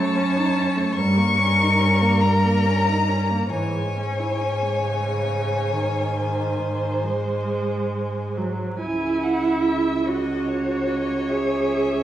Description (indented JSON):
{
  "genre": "classical, slow romantic movement for string quartet",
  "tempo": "44-51 BPM (dotted quarters)",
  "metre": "12/8",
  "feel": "rubato",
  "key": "C# minor",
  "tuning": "A4 = 438 Hz",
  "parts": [
    { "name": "muted violin", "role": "melody", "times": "0.0-12.0 s", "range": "C#5 to C#6", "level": "-27 LUFS", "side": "left 4 dB", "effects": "none" },
    { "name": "muted violin", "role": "second line", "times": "0.0-12.0 s", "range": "A#4 to G#5", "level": "-27 LUFS", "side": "left 1 dB", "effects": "none" },
    { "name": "muted viola", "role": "accompaniment", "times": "0.0-12.0 s", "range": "C#3 to G#4", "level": "-26 LUFS", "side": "right 2 dB", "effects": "none" },
    { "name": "muted cello", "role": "bass", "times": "0.0-12.0 s", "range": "C#2 to G#2", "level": "-23 LUFS", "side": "right 1 dB", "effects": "none" }
  ],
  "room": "wet recital hall reverb, RT60 1.4 s",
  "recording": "vinyl crackle, studio reverb",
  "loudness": "-20 LUFS",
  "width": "side -12 dB against mid",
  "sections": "0.0-8.8 A section; 8.8-12.0 B section",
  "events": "none",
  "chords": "0.0 D#m7b5/F#; 1.0 D#7/G; 3.5 C#m/G#; 6.2 G#; 8.8 C#m",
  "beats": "0.97 2.23 | 3.52 4.84 6.17 7.48 | 8.80 10.06 11.29"
}